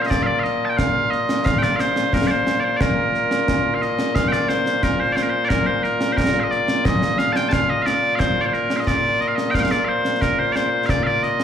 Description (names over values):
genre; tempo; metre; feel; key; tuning
scottish traditional, Scottish pipe music; 89 BPM; 2/4; straight; Bb major; A4 = 441 Hz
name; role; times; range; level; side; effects
loud bright bagpipes; melody; 0.0-11.4 s; Bb2 to A5; -19 LUFS; equal; slapback echo
concert snare drum and concert bass drum; drums; 0.1-11.4 s; none; -22 LUFS; equal; none
room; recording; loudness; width
light reverb, small room ambience; live gig heard through the venue's PA, club reverb; -17 LUFS; side -8 dB against mid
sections
0.0-4.2 A section; 4.2-11.4 A section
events
none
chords
none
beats
| 0.11 0.78 | 1.45 2.13 | 2.80 3.48 | 4.15 4.83 | 5.50 6.17 | 6.85 7.52 | 8.20 8.87 | 9.54 10.22 | 10.89